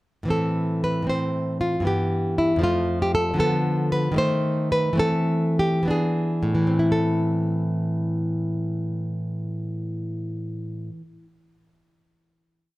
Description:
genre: classical, baroque-style dance for nylon-string guitar.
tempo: 55-79 BPM (dotted quarters).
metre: 6/8.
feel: rubato.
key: A minor.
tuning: A4 = 440 Hz.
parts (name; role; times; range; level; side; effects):
nylon-string guitar; solo; 0.2-11.4 s; F2 to C5; -21 LUFS; equal; none.
room: moderate recital hall reverb, RT60 1.6 s.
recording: close, detailed microphones.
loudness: -21 LUFS.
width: side -18 dB against mid.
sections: 0.3-6.9 A section; 6.9-11.0 final chord.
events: slowing down 2.6-6.9.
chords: 0.3 Am; 1.9 Em/G; 2.6 F; 3.4 Bm7b5/D; 4.2 D#dim7(no3); 5.0 Am/E; 5.9 E7; 6.9 Am.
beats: | 0.30 1.09 | 1.87 2.65 | 3.40 4.18 | 4.99 5.91 | 6.93 7.94 | 8.96 9.97.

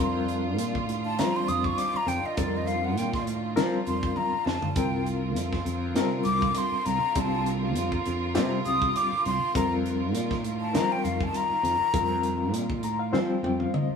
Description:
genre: electric jazz fusion.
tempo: 100 BPM.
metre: 4/4.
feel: swing 54% on 16ths.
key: unclear.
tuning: A4 = 440 Hz.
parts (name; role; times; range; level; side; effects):
breathy hollow jazz flute; melody; 0.0-12.5 s; D5 to Eb6; -28 LUFS; left 2 dB; none.
barky reed electric piano; accompaniment; 0.0-14.0 s; G3 to Bb5; -30 LUFS; left 3 dB; fast tremolo.
rich studio string section; sustained chords; 0.0-14.0 s; D3 to Bb4; -35 LUFS; right 1 dB; none.
sustaining fretless electric bass; bass; 0.0-13.9 s; C2 to F3; -30 LUFS; right 1 dB; none.
crisp fusion drum kit; drums; 0.3-13.9 s; hi-hat, kick drum, snare drum, toms; -32 LUFS; equal; none.
room: moderate stone room reverb, RT60 1.1 s.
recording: band playing live in one room.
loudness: -24 LUFS.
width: side -6 dB against mid.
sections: 0.0-14.0 A section.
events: flute solo 0.0-14.0; drum fill 4.2-4.8, 13.1-14.0; reed electric piano fill 12.5-14.0.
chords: 0.0 F9sus4; 4.8 C9sus4; 9.5 F9sus4.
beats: 0.59 1.19 1.78 | 2.38 2.98 3.57 4.17 | 4.77 5.36 5.96 6.56 | 7.16 7.75 8.35 8.95 | 9.54 10.14 10.74 11.34 | 11.94 12.54 13.13 13.73.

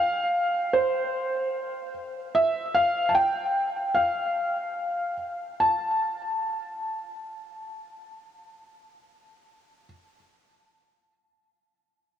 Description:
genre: dream pop.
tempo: 74 BPM.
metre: 4/4.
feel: straight.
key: unclear.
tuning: A4 = 438 Hz.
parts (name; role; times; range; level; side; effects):
felt-muted upright piano; melody; 0.0-9.9 s; C5 to A5; -24 LUFS; equal; ping-pong delay.
room: moderate huge ambient reverb, RT60 6.8 s.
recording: worn, warbling old tape, cassette tape, warbly pitch drift.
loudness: -24 LUFS.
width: side -10 dB against mid.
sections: 0.0-5.6 A section; 5.6-8.8 B section.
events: none.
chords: none.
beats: 0.71 1.52 | 2.33 3.15 3.96 4.77 | 5.58 6.39 7.20 8.01.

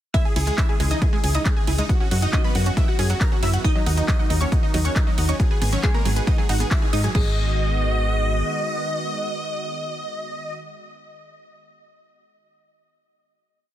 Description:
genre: uplifting trance.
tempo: 137 BPM.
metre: 4/4.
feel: straight.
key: G# minor.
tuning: A4 = 440 Hz.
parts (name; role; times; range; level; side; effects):
supersaw chords; melody; 0.1-10.5 s; A#3 to A#5; -28 LUFS; equal; cassette tape, sidechain pumping, dub echo.
glassy wavetable pluck; second line; 0.1-10.5 s; G#3 to E5; -35 LUFS; equal; none.
wide unison pluck; second line; 0.1-10.5 s; D#5 to A#6; -34 LUFS; right 2 dB; cassette tape, sidechain pumping, dub echo.
lush unison pad; sustained chords; 0.1-10.5 s; C#3 to F#4; -32 LUFS; right 1 dB; chorus, sidechain pumping.
wide unison pluck; arpeggios; 0.1-7.4 s; F#3 to G#5; -32 LUFS; right 4 dB; sidechain pumping, dub echo.
electronic kick drum; drums; 0.1-7.2 s; none; -21 LUFS; equal; none.
techno drum kit; drums; 0.1-7.2 s; crash cymbal, handclaps, hi-hat, ride cymbal; -30 LUFS; equal; sidechain pumping on hats, sidechain pumping on cymbals.
solid FM bass; bass; 0.4-8.4 s; G#1 to G#2; -22 LUFS; equal; sidechain pumping.
room: little or no reverb.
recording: dense, heavily limited modern master.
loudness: -19 LUFS.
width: side -12 dB against mid.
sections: 0.1-7.1 drop; 7.1-10.7 final chord.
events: drop 0.1-7.1; band accent 6.7.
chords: 0.1 C#m; 1.9 F#sus4; 3.6 D#m; 5.4 G#m7.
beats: | 0.14 0.58 1.02 1.46 | 1.89 2.33 2.77 3.21 | 3.65 4.08 4.52 4.96 | 5.40 5.83 6.27 6.71 | 7.15 7.59 8.03 8.46 | 8.90 9.34 9.78 10.21.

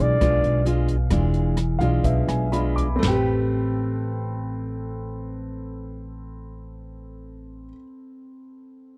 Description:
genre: bossa nova.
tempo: 117-136 BPM.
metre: 4/4.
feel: straight.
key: A minor.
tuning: A4 = 441 Hz.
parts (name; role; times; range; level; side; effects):
warm flugelhorn; melody; 0.0-0.7 s; D5; -24 LUFS; equal; none.
clear concert grand piano; accompaniment; 0.0-9.0 s; C4 to D6; -35 LUFS; equal; none.
nylon-string guitar; accompaniment; 0.0-7.9 s; B2 to B4; -29 LUFS; equal; none.
upright bass; bass; 0.0-7.7 s; E1 to B1; -27 LUFS; equal; none.
open jazz drum kit; drums; 0.0-3.1 s; hi-hat, kick drum, ride cymbal, rim click, snare drum, toms; -30 LUFS; equal; none.
room: little or no reverb.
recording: dry, close 1970s-style studio recording.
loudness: -23 LUFS.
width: mono.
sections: 0.0-3.0 A section; 3.0-7.1 B section.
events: slowing down 0.0-3.0; flugelhorn solo 0.0-3.0; grand piano fill 1.6-3.0.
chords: 0.0 E7b9; 3.0 Am9.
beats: 0.21 0.65 | 1.10 1.57 2.04 2.53 | 3.03 3.54 4.05 4.57 | 5.08 5.59 6.10 6.61.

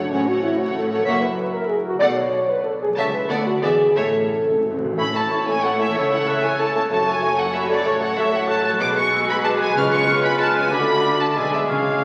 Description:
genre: classical.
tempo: 188 BPM.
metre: 3/4.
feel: rubato.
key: A major.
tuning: A4 = 441 Hz.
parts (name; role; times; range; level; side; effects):
rich symphonic violin section; melody; 0.0-12.0 s; C#5 to E#6; -26 LUFS; equal; none.
rich chamber violin section; second line; 0.0-12.0 s; F#4 to E5; -30 LUFS; equal; none.
clear symphonic viola section; accompaniment; 0.0-12.0 s; F#3 to F#4; -34 LUFS; equal; none.
mellow French horn section; sustained chords; 0.0-12.0 s; G#3 to D5; -25 LUFS; equal; none.
concert harp; arpeggios; 0.0-12.0 s; F#2 to A5; -33 LUFS; equal; none.
rich studio double bass section; bass; 0.0-12.0 s; E1 to D2; -40 LUFS; equal; none.
rich symphonic cello section; bass; 0.0-12.0 s; C#2 to D3; -33 LUFS; equal; none.
timpani; percussion; 0.1-0.6, 4.0-4.9, 6.9-7.4, 9.8-12.0 s; F#2 to C#3; -35 LUFS; equal; none.
silver concert flute; second line; 5.0-12.0 s; A5 to F#6; -29 LUFS; equal; none.
warm clarinet; second line; 5.0-12.0 s; E4 to G#4; -36 LUFS; equal; none.
warm oboe; second line; 5.0-12.0 s; B4 to D5; -30 LUFS; equal; none.
mellow bassoon; accompaniment; 5.0-12.0 s; G#3 to A3; -27 LUFS; equal; none.
room: wet scoring stage reverb, RT60 2.0 s.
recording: very old 78 rpm record, vinyl crackle.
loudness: -20 LUFS.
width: mono.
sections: 0.0-5.0 A section; 5.0-12.0 A section.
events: timpani fill 4.0-5.0.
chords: 0.1 F#m/A; 1.1 F#7; 2.0 Bm7; 3.0 A/C#; 3.3 Bm7/D; 3.6 E7; 4.0 A; 6.0 A/C#; 6.9 F#m; 7.9 F#m/A; 8.8 G#m7b5/B; 9.8 C#7; 10.7 D; 11.4 G#dim/B.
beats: | 0.12 0.43 0.75 | 1.06 1.38 1.69 | 2.01 2.33 2.65 | 2.97 3.29 3.62 | 3.96 4.30 4.64 | 4.98 5.30 5.63 | 5.95 6.27 6.59 | 6.92 7.23 7.54 | 7.86 8.17 8.48 | 8.80 9.12 9.44 | 9.76 10.07 10.39 | 10.71 11.04 11.37 | 11.70.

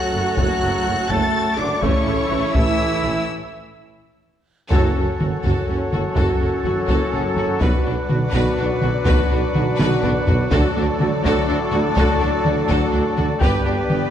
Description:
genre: cinematic, epic orchestral film score.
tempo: 83 BPM (dotted quarters).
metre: 6/8.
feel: straight.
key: F# phrygian from 4.7 s.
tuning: A4 = 440 Hz.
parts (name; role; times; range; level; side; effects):
rich chamber violin section; melody; 0.0-14.1 s; C#5 to A6; -30 LUFS; left 4 dB; none.
bright symphonic violin section; second line; 0.0-14.0 s; C#4 to C#5; -30 LUFS; left 3 dB; none.
rich symphonic viola section; accompaniment; 0.0-14.0 s; C#3 to G4; -28 LUFS; right 2 dB; none.
clear French horn section; sustained chords; 0.0-14.1 s; A3 to G4; -28 LUFS; left 4 dB; none.
clear woodwind section; sustained chords; 0.0-14.1 s; C#4 to A5; -29 LUFS; left 1 dB; none.
warm trombone section; sustained chords; 0.0-14.1 s; F#2 to B3; -29 LUFS; right 2 dB; none.
mellow trumpet section; stabs; 0.0-14.1 s; A4 to A5; -27 LUFS; equal; none.
clear symphonic cello section; bass; 0.0-14.0 s; F#2 to A4; -28 LUFS; right 1 dB; none.
clear symphonic double bass section; bass; 0.1-14.0 s; F#1 to D2; -26 LUFS; right 1 dB; none.
mellow tuba; bass; 0.1-14.0 s; F#1 to D2; -26 LUFS; right 3 dB; none.
taiko ensemble; drums; 0.4-14.1 s; none; -22 LUFS; equal; none.
room: wet scoring stage reverb, RT60 1.5 s.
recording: dark, warm production.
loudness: -17 LUFS.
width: side -10 dB against mid.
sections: 0.0-4.7 A section; 4.7-14.1 B section.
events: break 3.3-4.7; build-up 4.7-14.1; band accent 4.7-5.2; drum fill 9.8-10.5.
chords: 0.0 F#m; 1.8 A; 4.7 F#m; 7.6 Bm; 10.5 D; 13.4 G.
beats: | 0.37 1.09 | 1.82 2.54 | 3.27 4.00 | 4.72 5.45 | 6.17 6.89 | 7.62 8.34 | 9.07 9.79 | 10.52 11.24 | 11.97 12.69 | 13.42.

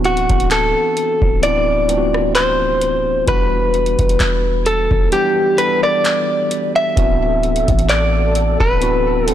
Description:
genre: contemporary R&B.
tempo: 65 BPM.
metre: 4/4.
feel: swing 54% on 16ths.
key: unclear.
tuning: A4 = 440 Hz.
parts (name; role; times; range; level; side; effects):
tine electric piano; accompaniment; 0.0-9.3 s; E3 to A4; -21 LUFS; left 1 dB; medium stereo tremolo.
warm 808-style bass; bass; 0.0-9.3 s; D1 to A1; -20 LUFS; equal; none.
booming analog drum machine; drums; 0.0-9.3 s; handclaps, hi-hat, kick drum, rim click; -20 LUFS; equal; none.
direct-recorded clean electric guitar; melody; 0.1-9.3 s; F#4 to E5; -16 LUFS; equal; ping-pong delay.
hollow soft pad; sustained chords; 7.1-9.3 s; A4 to E6; -27 LUFS; right 1 dB; ensemble chorus.
room: light reverb.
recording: blown-out, overdriven recording, overdrive.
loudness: -13 LUFS.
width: side -11 dB against mid.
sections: 0.0-9.3 A section.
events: kick muted 5.1-7.0.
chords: 0.0 D13; 3.3 Em9; 7.0 D13.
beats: 0.51 1.43 2.35 | 3.28 4.20 5.12 6.05 | 6.97 7.89 8.82.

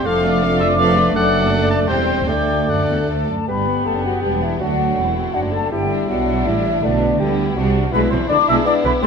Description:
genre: quick classical-period movement for symphony orchestra.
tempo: 162 BPM.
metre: 3/4.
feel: rubato.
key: G major.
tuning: A4 = 445 Hz.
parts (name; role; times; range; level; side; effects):
warm studio violin section; melody; 0.0-9.1 s; D4 to F5; -28 LUFS; left 5 dB; none.
mellow hollow large flute ensemble; second line; 0.0-9.1 s; D5 to E6; -22 LUFS; left 2 dB; none.
rich studio violin section; second line; 0.0-9.1 s; B3 to A4; -28 LUFS; left 4 dB; none.
warm clarinet; second line; 0.0-9.1 s; D4 to E5; -26 LUFS; left 2 dB; none.
warm cor anglais; second line; 0.0-3.1 s; D5 to A5; -23 LUFS; right 2 dB; none.
mellow bassoon; accompaniment; 0.0-9.1 s; G3 to G4; -24 LUFS; equal; none.
rich studio viola section; accompaniment; 0.0-9.1 s; D3 to C4; -25 LUFS; right 2 dB; none.
mellow French horn section; sustained chords; 0.0-9.0 s; D3 to E4; -25 LUFS; left 5 dB; none.
clear studio cello section; bass; 0.0-9.1 s; D2 to D3; -24 LUFS; right 3 dB; none.
rich studio double bass section; bass; 0.1-9.1 s; E1 to D2; -24 LUFS; right 3 dB; none.
room: moderate scoring stage reverb, RT60 1.8 s.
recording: none.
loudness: -15 LUFS.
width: side -6 dB against mid.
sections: 0.0-3.5 A section; 3.5-9.1 B section.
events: none.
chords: 0.1 Dm/F; 1.1 D/F#; 1.9 C/E; 2.3 D; 3.5 G; 4.6 D7; 5.7 G; 6.8 G/B; 7.9 E7/B.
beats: | 0.05 0.42 0.78 | 1.14 1.51 1.89 | 2.28 2.69 3.09 | 3.48 3.86 4.23 | 4.61 4.98 5.35 | 5.72 6.09 6.46 | 6.83 7.20 7.57 | 7.93 8.30 8.66 | 9.03.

